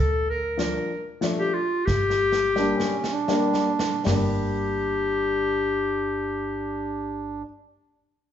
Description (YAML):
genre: klezmer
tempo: 74-97 BPM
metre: 3/4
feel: straight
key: G minor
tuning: A4 = 440 Hz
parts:
  - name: warm clarinet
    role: melody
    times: 0.0-7.4 s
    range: F4 to Bb4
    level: -25 LUFS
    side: left 3 dB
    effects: none
  - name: upright bass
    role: bass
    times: 0.0-7.4 s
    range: G1 to D2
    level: -30 LUFS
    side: right 1 dB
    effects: none
  - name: dark upright piano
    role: accompaniment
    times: 0.6-7.4 s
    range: F3 to D4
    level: -28 LUFS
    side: left 3 dB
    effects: none
  - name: street-band drum kit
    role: drums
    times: 0.6-4.3 s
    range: hi-hat, kick drum, snare drum, toms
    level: -30 LUFS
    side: equal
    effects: none
  - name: mellow accordion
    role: second line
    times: 2.6-7.4 s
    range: C#4 to D4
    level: -28 LUFS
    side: right 5 dB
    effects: none
room: moderate large studio reverb, RT60 1.2 s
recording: band playing live in one room, nothing above 7.7 kHz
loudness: -22 LUFS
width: side -10 dB against mid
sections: 0.0-4.1 A section; 4.1-8.3 B section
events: slowing down 0.0-4.1; drum fill 1.9-4.1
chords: 0.0 Dm; 1.9 Gm